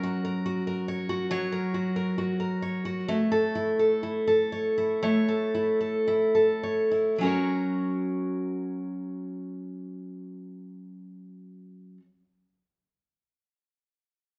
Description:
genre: pop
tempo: 51-72 BPM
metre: 4/4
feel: straight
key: unclear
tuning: A4 = 440 Hz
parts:
  - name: picked steel-string acoustic guitar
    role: solo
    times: 0.0-12.1 s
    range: F#3 to C#5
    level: -28 LUFS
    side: equal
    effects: none
room: wet large studio reverb, RT60 1.0 s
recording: band playing live in one room, nothing above 8.0 kHz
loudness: -27 LUFS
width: mono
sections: 0.0-7.2 A section; 7.2-11.9 B section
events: slowing down 0.0-7.2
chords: 0.0 F#; 3.1 A; 7.2 F#

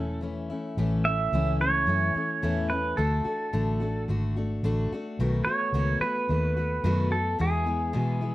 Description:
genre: honky-tonk and classic country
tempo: 109 BPM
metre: 4/4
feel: straight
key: A major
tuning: A4 = 440 Hz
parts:
  - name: pedal steel guitar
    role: melody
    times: 0.0-8.3 s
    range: G#4 to E5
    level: -28 LUFS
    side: right 2 dB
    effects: slapback echo
  - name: picked steel-string acoustic guitar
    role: accompaniment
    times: 0.0-8.3 s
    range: E2 to F#4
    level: -30 LUFS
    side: left 2 dB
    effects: slapback echo
  - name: vintage muted fingered electric bass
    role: bass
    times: 0.0-8.3 s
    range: E1 to B2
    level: -27 LUFS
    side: equal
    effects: none
room: little or no reverb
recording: recorded outdoors, with no room sound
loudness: -24 LUFS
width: side -16 dB against mid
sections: 0.8-8.3 A section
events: none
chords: 0.0 A; 3.0 D; 5.2 B7; 7.4 E

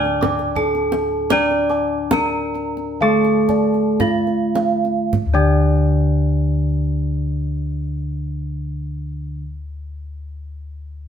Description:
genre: Javanese gamelan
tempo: 50-91 BPM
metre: 4/4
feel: straight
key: unclear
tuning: A4 = 439 Hz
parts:
  - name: gamelan-type bronze metallophone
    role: melody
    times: 0.0-9.4 s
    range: D4 to D5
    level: -23 LUFS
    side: right 3 dB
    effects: none
  - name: gamelan-type bronze metallophone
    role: accompaniment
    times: 0.0-9.4 s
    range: D3 to D4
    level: -21 LUFS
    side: equal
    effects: none
  - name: gamelan-type bossed gongs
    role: arpeggios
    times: 0.0-9.4 s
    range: D5 to D6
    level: -27 LUFS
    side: left 2 dB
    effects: none
  - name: gamelan-type bronze metallophone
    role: arpeggios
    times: 0.0-9.4 s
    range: D5 to D6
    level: -27 LUFS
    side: right 4 dB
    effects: none
  - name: gamelan-type bossed gongs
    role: bass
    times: 0.0-9.3 s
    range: D2 to D5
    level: -24 LUFS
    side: left 2 dB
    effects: none
  - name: kendang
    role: percussion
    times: 0.1-5.7 s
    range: none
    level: -23 LUFS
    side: right 1 dB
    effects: none
room: moderate stone room reverb, RT60 1.0 s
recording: band playing live in one room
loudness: -17 LUFS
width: side -8 dB against mid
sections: 0.0-5.1 A section; 5.1-10.0 B section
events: slowing down 0.0-5.1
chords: none

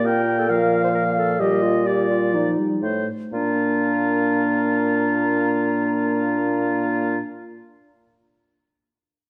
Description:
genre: quick classical-period movement for wind quintet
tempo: 118-136 BPM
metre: 4/4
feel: straight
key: Bb major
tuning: A4 = 438 Hz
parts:
  - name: mellow hollow silver concert flute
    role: melody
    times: 0.0-7.2 s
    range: C5 to Bb5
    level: -32 LUFS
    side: equal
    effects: none
  - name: warm oboe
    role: second line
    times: 0.0-7.2 s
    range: F4 to G5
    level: -29 LUFS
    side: equal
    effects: none
  - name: dark French horn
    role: accompaniment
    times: 0.0-7.2 s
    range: F3 to Bb3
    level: -30 LUFS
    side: equal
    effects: none
  - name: warm clarinet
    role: accompaniment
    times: 0.0-7.2 s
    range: D4 to C5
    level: -25 LUFS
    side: equal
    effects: none
  - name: mellow bassoon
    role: bass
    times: 0.0-7.2 s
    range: A2 to Bb2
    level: -27 LUFS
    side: equal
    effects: none
room: wet recital hall reverb, RT60 1.8 s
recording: dark, warm production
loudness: -21 LUFS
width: mono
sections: 0.0-3.3 A section; 3.3-7.3 B section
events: slowing down 0.0-3.3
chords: 0.0 Bb5; 1.4 F7/Bb; 3.3 Bb

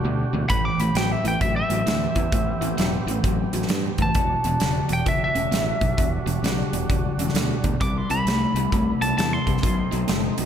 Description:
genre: blues rock power trio and southern rock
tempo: 132 BPM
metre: 4/4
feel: swing 64% on 8ths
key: E minor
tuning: A4 = 439 Hz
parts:
  - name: overdriven tonewheel organ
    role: sustained chords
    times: 0.0-10.5 s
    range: G3 to G4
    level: -34 LUFS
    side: right 3 dB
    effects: wide subtle chorus
  - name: crunchy overdriven guitar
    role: riff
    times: 0.0-10.5 s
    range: E2 to A3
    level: -25 LUFS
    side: left 1 dB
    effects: none
  - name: growling fingered electric bass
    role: bass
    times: 0.0-10.5 s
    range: E1 to G2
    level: -28 LUFS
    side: equal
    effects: overdrive
  - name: lightly driven lead guitar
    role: melody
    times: 0.5-10.2 s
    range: E5 to D6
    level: -26 LUFS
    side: equal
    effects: none
  - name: big rock drum kit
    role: drums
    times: 0.5-10.5 s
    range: hi-hat, kick drum, snare drum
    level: -26 LUFS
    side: equal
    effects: none
room: moderate lush hall reverb, RT60 1.9 s, small room ambience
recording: big arena sound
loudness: -20 LUFS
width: side -9 dB against mid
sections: 0.0-10.5 A section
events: none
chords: 0.0 Em9; 0.5 Am9; 4.2 Em9; 7.8 Cmaj7; 9.6 B7b9

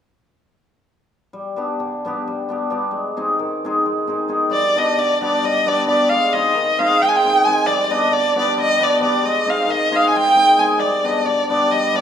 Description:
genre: balkan folk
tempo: 268 BPM (eighths)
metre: 7/8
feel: straight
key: G phrygian dominant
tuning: A4 = 441 Hz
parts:
  - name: cimbalom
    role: accompaniment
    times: 1.3-12.0 s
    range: D3 to Ab4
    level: -19 LUFS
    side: left 2 dB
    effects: none
  - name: warm violin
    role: melody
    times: 4.5-12.0 s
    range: D5 to Ab5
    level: -16 LUFS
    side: right 1 dB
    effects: none
room: wet recital hall reverb, RT60 1.6 s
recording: none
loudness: -15 LUFS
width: side -8 dB against mid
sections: 1.3-4.5 A section; 4.5-12.0 B section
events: none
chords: 1.3 G; 2.9 Ab; 4.5 G; 6.1 Ab; 7.7 G; 9.2 Ab; 10.8 G

